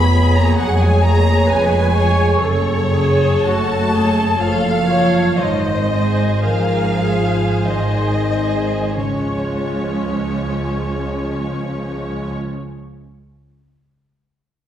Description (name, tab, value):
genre	classical, slow romantic movement for symphony orchestra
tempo	44-68 BPM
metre	3/4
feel	rubato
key	Db major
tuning	A4 = 440 Hz
part	rich studio violin section	melody	0.0-12.3 s	Db5 to Cb6	-23 LUFS	left 1 dB	none
part	rich studio violin section	second line	0.0-12.3 s	Db4 to Db5	-24 LUFS	equal	none
part	rich studio viola section	accompaniment	0.0-12.3 s	F3 to Db5	-24 LUFS	equal	none
part	dark French horn section	sustained chords	0.0-12.3 s	Db3 to Db4	-22 LUFS	left 1 dB	none
part	rich studio cello section	bass	0.0-12.3 s	Db2 to Ab2	-22 LUFS	right 1 dB	none
part	warm studio double bass section	bass	0.0-12.3 s	F1 to Db2	-21 LUFS	right 1 dB	none
part	timpani	percussion	9.0-12.3 s	Db3	-31 LUFS	equal	none
room	wet recital hall reverb, RT60 1.3 s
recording	recorded in a church or concert hall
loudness	-15 LUFS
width	side -10 dB against mid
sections	0.0-9.0 A section; 9.0-12.9 B section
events	slowing down 1.0-9.0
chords	0.0 Db/F; 2.4 Gbm; 5.4 Ab; 9.0 Db